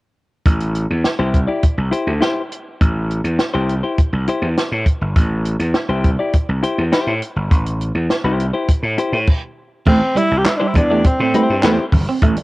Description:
funk; 102 BPM; 4/4; straight; A minor; A4 = 440 Hz
gritty slap bass; bass; 0.5-12.4 s; G1 to A2; -19 LUFS; equal; overdrive
compact cocktail drum kit; drums; 0.5-12.4 s; crash cymbal, handclaps, hi-hat, kick drum, snare drum; -16 LUFS; equal; cassette tape
clean electric guitar; accompaniment; 1.2-11.8 s; E4 to D5; -21 LUFS; left 3 dB; cassette tape
breathy tenor saxophone; melody; 9.9-11.9 s; C4 to G4; -18 LUFS; equal; cassette tape
electric guitar at the edge of break-up; riff; 9.9-12.4 s; G3 to C4; -19 LUFS; right 3 dB; phaser, cassette tape
congas; percussion; 9.9-12.4 s; -26 LUFS; right 3 dB
light reverb, small room reverb; home recording on cassette; -15 LUFS; side -20 dB against mid
0.5-9.9 A section; 9.9-12.4 B section
0.5 Am7
| 0.46 1.05 1.63 2.22 | 2.81 3.40 3.98 4.57 | 5.16 5.75 6.34 6.93 | 7.52 8.11 8.69 9.28 | 9.87 10.46 11.05 11.63 | 12.22

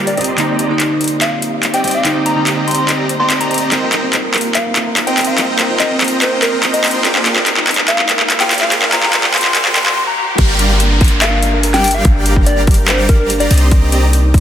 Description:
future bass; 144 BPM; 4/4; half-time; C minor; A4 = 439 Hz
glassy digital keys; accompaniment; 0.0-3.7 s; D3 to F4; -20 LUFS; right 1 dB; chorus, sidechain pumping, digital delay
ethereal airy pad; sustained chords; 0.0-9.9 s; Ab3 to G5; -27 LUFS; equal; ensemble chorus, built-in reverb, sidechain pumping
supersaw chords; riff; 0.0-14.0 s; G3 to C6; -19 LUFS; equal; sidechain pumping, low-pass filter
warm 808-style bass; bass; 0.0-14.4 s; G1 to C2; -15 LUFS; equal; sidechain pumping, high-pass filter
riser and downlifter; sound effects; 1.0-13.7 s; -25 LUFS; equal
soft struck synth lead; melody; 0.1-13.6 s; Bb4 to C6; -20 LUFS; left 1 dB; chorus, sidechain pumping, digital delay
trap drum kit; drums; 0.1-14.4 s; crash cymbal, handclaps, hi-hat, snare drum; -15 LUFS; equal; overdrive
concert harp; arpeggios; 3.7-14.4 s; Bb3 to Bb4; -23 LUFS; right 1 dB; sidechain pumping, digital delay
electronic kick drum; drums; 10.4-14.4 s; -11 LUFS; equal; overdrive
moderate shimmer reverb, RT60 4.7 s; dense, heavily limited modern master, high-pass filter; -11 LUFS; side -10 dB against mid
0.0-10.4 A section; 10.4-14.4 B section
build-up 0.0-10.4; drum fill 0.0-10.0; filter sweep on supersaw synth 0.0-10.4; filter sweep 0.0-10.4; break 10.0-10.4; drop 10.4-14.4
0.2 Cm9; 3.7 F7sus4/C; 7.1 Bb13; 10.4 Gm7; 13.5 Cm9
| 0.39 0.80 1.22 1.64 | 2.05 2.47 2.88 3.30 | 3.72 4.13 4.55 4.97 | 5.38 5.80 6.22 6.63 | 7.05 7.47 7.88 8.30 | 8.72 9.13 9.55 9.97 | 10.38 10.80 11.22 11.63 | 12.05 12.47 12.88 13.30 | 13.72 14.13

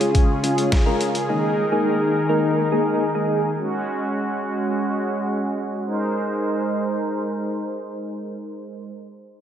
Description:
synth-pop; 105 BPM; 4/4; straight; Ab major; A4 = 439 Hz
soft electric-piano-like synth keys; accompaniment; 0.0-3.5 s; Ab3 to Bb4; -21 LUFS; equal; chorus, phaser, low-pass filter, slapback echo
brassy analog pad; sustained chords; 0.0-8.9 s; Db3 to C5; -23 LUFS; equal; chorus, low-pass filter
boom bap sampler-style drum kit; drums; 0.0-1.3 s; hi-hat, kick drum, snare drum; -20 LUFS; equal
wet lush hall reverb, RT60 2.5 s; big arena sound; -20 LUFS; side -9 dB against mid
0.0-5.9 A section; 5.9-8.1 B section
filter sweep 0.0-5.9
0.0 Db; 1.3 Ebsus4; 3.6 Gbsus2; 5.9 Abadd9
0.15 0.72 | 1.29 1.86 2.43 3.01 | 3.58 4.15 4.72 5.29 | 5.86 6.43 7.01 7.58

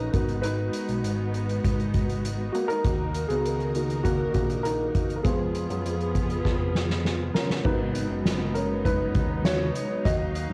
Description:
piano-driven pop; 100 BPM; 4/4; straight; A4 = 440 Hz
warm upright piano; accompaniment; 0.0-10.5 s; Ab3 to Eb5; -32 LUFS; equal; cassette tape
warm studio string section; sustained chords; 0.0-10.5 s; Eb3 to Bb5; -34 LUFS; equal; cassette tape
fat analog bass; bass; 0.0-10.5 s; Gb1 to Gb2; -33 LUFS; equal
soft-mallet drum kit; drums; 0.1-10.5 s; crash cymbal, hi-hat, kick drum, snare drum; -30 LUFS; equal; cassette tape
moderate small room reverb, RT60 0.5 s; home recording on cassette; -26 LUFS; mono
0.0-7.7 A section; 7.7-10.5 B section
upright piano solo 0.0-7.7, 7.7-10.5; drum fill 6.5-7.7
0.1 Abm7; 2.8 Ebm; 5.2 Fdim; 7.7 Abm7
| 0.44 1.04 1.64 2.24 | 2.84 3.44 4.05 4.65 | 5.25 5.85 6.45 7.05 | 7.65 8.25 8.85 9.45 | 10.05

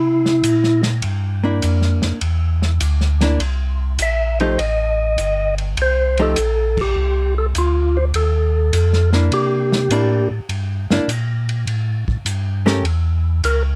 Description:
soul jazz organ trio; 102 BPM; 4/4; swing 68% on 8ths; C mixolydian; A4 = 438 Hz
percussive tonewheel organ; melody; 0.0-13.6 s; E4 to E5; -21 LUFS; equal; fast rotary speaker, plate reverb
tonewheel organ; bass; 0.0-13.8 s; G1 to C3; -21 LUFS; equal; chorus vibrato, slow rotary speaker
warm soul drum kit; drums; 0.3-13.6 s; crash cymbal, hi-hat, kick drum, ride cymbal, snare drum; -29 LUFS; equal
archtop guitar, miked and amplified; accompaniment; 1.4-12.8 s; F3 to Bb4; -22 LUFS; equal
little or no reverb; -18 LUFS; mono
0.0-13.8 A section
band accent 6.7
0.0 C9; 4.6 F9; 9.3 C9; 11.7 A7
0.44 1.04 1.63 | 2.22 2.81 3.41 4.00 | 4.59 5.19 5.78 6.37 | 6.96 7.55 8.14 8.73 | 9.32 9.91 10.50 11.09 | 11.68 12.27 12.86 13.44

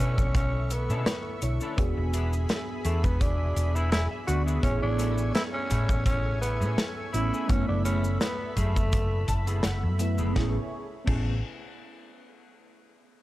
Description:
vaporwave; 84 BPM; 4/4; swing 54% on 16ths; A major; A4 = 440 Hz
growling tenor saxophone; melody; 0.0-9.6 s; A3 to F#4; -33 LUFS; equal; vintage 12-bit sampler grit, tape echo
mellow FM electric piano; accompaniment; 0.0-11.3 s; D3 to C#6; -35 LUFS; right 1 dB; phaser, wide subtle chorus, analog delay
lush unison pad; sustained chords; 0.0-10.7 s; A3 to C#6; -39 LUFS; equal; chorus, vintage 12-bit sampler grit
clean electric guitar; riff; 0.0-11.4 s; A3 to A5; -39 LUFS; left 2 dB; ensemble chorus, analog delay
hollow-body short-scale fingered electric bass; bass; 0.0-11.4 s; E1 to B2; -27 LUFS; equal
big rock drum kit; drums; 0.0-11.2 s; cabasa, crash cymbal, hi-hat, snare drum; -33 LUFS; equal
kick drum; drums; 0.2-11.2 s; -28 LUFS; equal
studio reverb; cassette tape; -24 LUFS; side -16 dB against mid
0.0-10.4 A section; 10.4-13.2 B section
clean electric guitar fill 3.6-4.6, 8.9-10.4
0.0 Bm11; 1.8 E7; 4.6 Amaj7; 7.5 F#m11; 10.4 Amaj7
0.35 1.07 | 1.78 2.50 3.21 3.92 | 4.64 5.35 6.07 6.78 | 7.50 8.21 8.93 9.64 | 10.35 11.07

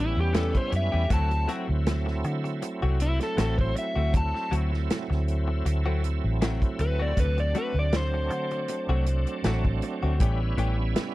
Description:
straight-eighth soul blues; 79 BPM; 4/4; swing 54% on 16ths; A4 = 442 Hz
overdriven slide guitar; melody; 0.0-10.2 s; E4 to A5; -30 LUFS; left 1 dB
bright tonewheel organ; accompaniment; 0.0-11.1 s; F#3 to E4; -33 LUFS; right 4 dB; slow rotary speaker, overdrive, chorus vibrato
vintage muted fingered electric bass; bass; 0.0-10.9 s; A1 to D3; -26 LUFS; equal
direct-recorded clean electric guitar; stabs; 0.3-10.8 s; E3 to G4; -35 LUFS; left 5 dB; lush chorus, tape echo
warm soul drum kit; drums; 0.3-11.1 s; hi-hat, kick drum, snare drum; -27 LUFS; equal
little or no reverb; -24 LUFS; side -17 dB against mid
0.0-11.1 A section
0.0 A7; 1.1 D7; 10.2 A7
0.35 | 1.10 1.86 2.62 3.38 | 4.14 4.90 5.66 6.41 | 7.17 7.93 8.69 9.45 | 10.21 10.96

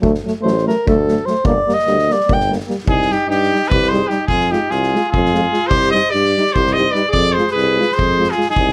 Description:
balkan folk, Balkan brass band; 295 BPM (eighths); 7/8; straight; C harmonic minor; A4 = 442 Hz
mellow French horn; accompaniment; 0.0-8.4 s; A3 to F4; -24 LUFS; equal
warm euphonium; accompaniment; 0.0-8.4 s; F#3 to Ab3; -26 LUFS; equal
clear tuba; bass; 0.0-8.7 s; G1 to G2; -22 LUFS; equal
soft-mallet drum kit; percussion; 0.0-8.7 s; kick drum, snare drum; -25 LUFS; equal
clear alto saxophone; second line; 0.4-8.7 s; Eb4 to G5; -22 LUFS; equal
bright trumpet; melody; 2.9-8.7 s; G4 to Eb5; -19 LUFS; equal
light reverb; -16 LUFS; mono
0.0-2.9 A section; 2.9-8.7 B section
alto saxophone solo 0.0-2.9
0.0 D; 1.4 Gm; 2.9 Cm; 4.3 Fm; 5.7 Cm; 7.1 Fm
| 0.03 0.23 0.44 0.64 0.84 1.04 1.24 | 1.45 1.65 1.85 2.05 2.25 2.46 2.66 | 2.86 3.06 3.27 3.47 3.67 3.87 4.08 | 4.28 4.48 4.69 4.89 5.09 5.30 5.50 | 5.71 5.91 6.11 6.32 6.52 6.72 6.93 | 7.13 7.33 7.54 7.74 7.95 8.15 8.35 | 8.56

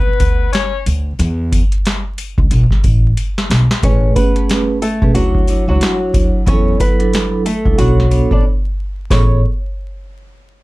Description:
hip hop, boom-bap hip-hop; 91 BPM; 4/4; swing 60% on 16ths; A major; A4 = 439 Hz
dark horn section; stabs; 0.0-0.8 s; B3 to C#5; -20 LUFS; left 8 dB; high-pass filter, low-pass filter, slapback echo
upright bass; bass; 0.0-9.4 s; A1 to E2; -15 LUFS; equal
booming analog drum machine; drums; 0.2-9.3 s; hi-hat, kick drum, snare drum; -15 LUFS; equal
sleigh bells; percussion; 0.2-9.4 s; -35 LUFS; left 14 dB
flamenco guitar; melody; 3.8-9.4 s; F#3 to D5; -19 LUFS; left 1 dB; high-pass filter, low-pass filter, slapback echo
vibraphone with medium mallets; accompaniment; 3.8-9.4 s; F#3 to C#5; -19 LUFS; right 3 dB; high-pass filter, low-pass filter
little or no reverb; vinyl crackle; -12 LUFS; side -20 dB against mid
0.0-3.8 A section; 3.8-9.1 B section; 9.1-10.6 C section
break 0.0-3.8, 8.4-9.1; drum fill 3.2-3.8
0.0 Bmadd9/D; 1.2 N.C.; 2.5 Asus2; 3.8 Amaj9; 5.1 Dmaj9; 6.5 E9sus4; 7.8 Bm9; 9.1 Amaj9
0.53 | 1.19 1.85 2.51 3.17 | 3.83 4.49 5.15 5.81 | 6.47 7.13 7.79 8.45 | 9.11

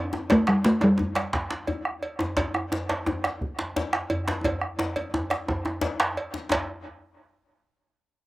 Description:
west african traditional, West African drum ensemble; 116 BPM (dotted quarters); 12/8; straight; A4 = 440 Hz
talking drum; melody; 0.0-1.9 s; G3 to C4; -21 LUFS; equal; slapback echo
bombo; percussion; 0.1-6.7 s; -30 LUFS; right 2 dB
djembe; percussion; 0.1-6.7 s; -33 LUFS; left 3 dB; slapback echo
djembe; percussion; 0.1-6.7 s; -29 LUFS; right 1 dB; slapback echo
cowbell; percussion; 0.3-6.7 s; -32 LUFS; right 2 dB
little or no reverb; recorded outdoors, with no room sound; -24 LUFS; side -18 dB against mid
0.0-6.5 A section; 6.5-8.3 B section
drum fill 4.4-6.5
| 0.30 0.82 1.34 1.86 | 2.38 2.90 3.41 3.93 | 4.45 4.97 5.49 6.00 | 6.52

